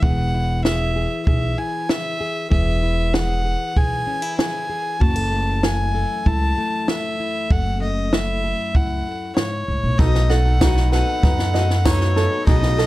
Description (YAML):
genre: indie folk with a building arrangement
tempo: 96 BPM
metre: 4/4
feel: straight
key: B mixolydian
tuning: A4 = 440 Hz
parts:
  - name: warm fiddle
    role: melody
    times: 0.0-12.9 s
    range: C#5 to A5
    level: -24 LUFS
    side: equal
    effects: none
  - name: fingerpicked plugged-in steel-string acoustic guitar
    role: accompaniment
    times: 0.0-10.0 s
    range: F#2 to A4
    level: -27 LUFS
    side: left 3 dB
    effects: none
  - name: upright bass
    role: bass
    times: 0.0-12.9 s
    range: E1 to F#2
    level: -20 LUFS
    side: equal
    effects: none
  - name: compact cocktail drum kit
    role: drums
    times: 0.0-12.9 s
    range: kick drum, snare drum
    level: -19 LUFS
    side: equal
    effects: none
  - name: picked steel-string acoustic guitar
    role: accompaniment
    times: 10.0-12.9 s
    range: B2 to A4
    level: -28 LUFS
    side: left 6 dB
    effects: plate reverb
  - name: warm upright piano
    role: accompaniment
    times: 10.0-12.9 s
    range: B1 to B4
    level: -29 LUFS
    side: left 4 dB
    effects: plate reverb
  - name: glassy FM pad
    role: sustained chords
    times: 10.7-12.9 s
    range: A4 to B5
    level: -34 LUFS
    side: left 1 dB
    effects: ensemble chorus, built-in reverb, plate reverb
  - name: ukulele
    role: arpeggios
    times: 10.0-12.9 s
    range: D#4 to D#5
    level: -26 LUFS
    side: right 6 dB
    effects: plate reverb
  - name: tambourine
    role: percussion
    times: 10.6-12.0 s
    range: none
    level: -34 LUFS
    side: right 9 dB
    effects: none
room: light reverb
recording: dark, warm production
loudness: -17 LUFS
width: side -16 dB against mid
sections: 0.0-10.0 A section; 10.0-12.9 B section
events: none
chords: 0.0 E; 5.0 F#m7; 10.0 B7